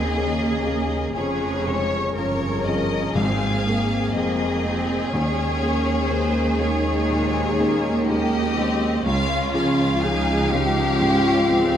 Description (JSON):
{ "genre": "cinematic", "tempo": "61 BPM", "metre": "4/4", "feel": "rubato", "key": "unclear", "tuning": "A4 = 435 Hz", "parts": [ { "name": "warm symphonic violin section", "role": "melody", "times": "0.0-11.8 s", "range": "C5 to F5", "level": "-28 LUFS", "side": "left 4 dB", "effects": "none" }, { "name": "warm symphonic violin section", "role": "second line", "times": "0.0-11.8 s", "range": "F4 to Db5", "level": "-27 LUFS", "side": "left 3 dB", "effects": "none" }, { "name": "felt-muted upright piano", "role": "accompaniment", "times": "0.0-11.8 s", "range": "Db2 to Ab4", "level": "-27 LUFS", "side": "left 1 dB", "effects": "none" }, { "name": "rich symphonic viola section", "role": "accompaniment", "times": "0.0-11.8 s", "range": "C3 to Eb4", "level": "-29 LUFS", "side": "right 2 dB", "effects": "none" }, { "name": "dark French horn section", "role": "sustained chords", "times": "0.0-11.8 s", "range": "Db3 to Ab4", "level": "-27 LUFS", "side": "left 2 dB", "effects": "none" }, { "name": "rich studio double bass section", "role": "bass", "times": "0.0-11.8 s", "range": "F1 to Eb2", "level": "-27 LUFS", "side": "right 3 dB", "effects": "none" }, { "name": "rich symphonic cello section", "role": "bass", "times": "0.0-11.8 s", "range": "Db2 to Ab2", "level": "-28 LUFS", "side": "right 3 dB", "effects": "none" }, { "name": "timpani", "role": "percussion", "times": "3.2-6.6 s", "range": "Ab2 to Eb3", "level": "-28 LUFS", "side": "left 1 dB", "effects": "none" } ], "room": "light reverb", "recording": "close, detailed microphones", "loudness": "-19 LUFS", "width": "side -9 dB against mid", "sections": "0.0-11.8 A section", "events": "none", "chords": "0.0 Eb7sus4; 1.2 Db/F; 3.1 Abadd9; 5.1 Eb7sus4; 9.0 Db" }